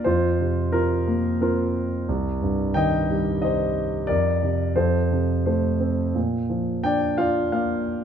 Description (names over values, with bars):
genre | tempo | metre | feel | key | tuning
classical, lyrical solo piano | 88 BPM | 3/4 | rubato | unclear | A4 = 440 Hz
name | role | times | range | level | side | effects
dark concert grand piano | solo | 0.0-8.0 s | C2 to G5 | -20 LUFS | equal | none
room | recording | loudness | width
moderate recital hall reverb, RT60 1.7 s | minimal, uncompressed stereo recording | -20 LUFS | side -8 dB against mid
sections
0.0-8.0 A section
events
none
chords
0.1 Fsus4; 2.1 Cm; 4.1 Fsus4; 4.8 F; 6.2 Bb